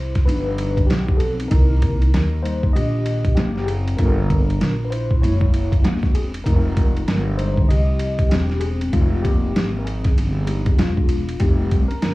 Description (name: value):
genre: hip hop, jazz-hop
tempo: 97 BPM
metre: 4/4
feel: swing 61% on 16ths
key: F minor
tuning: A4 = 441 Hz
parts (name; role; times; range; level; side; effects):
- mellow tine electric piano; accompaniment; 0.0-12.1 s; Eb3 to Eb5; -25 LUFS; left 3 dB; phaser, cassette tape
- upright bass; bass; 0.0-12.1 s; Fb1 to Eb2; -20 LUFS; equal; transformer saturation
- boom bap sampler-style drum kit; drums; 0.2-12.1 s; hi-hat, kick drum, ride cymbal, snare drum; -20 LUFS; equal; cassette tape
room: light reverb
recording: home recording on cassette, vinyl crackle, studio reverb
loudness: -17 LUFS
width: side -19 dB against mid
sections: 0.0-11.4 A section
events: tine electric piano solo 0.0-11.4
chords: 0.3 G7b13; 1.5 Cm7; 4.0 Gm7; 5.2 Gb9; 6.5 Fm9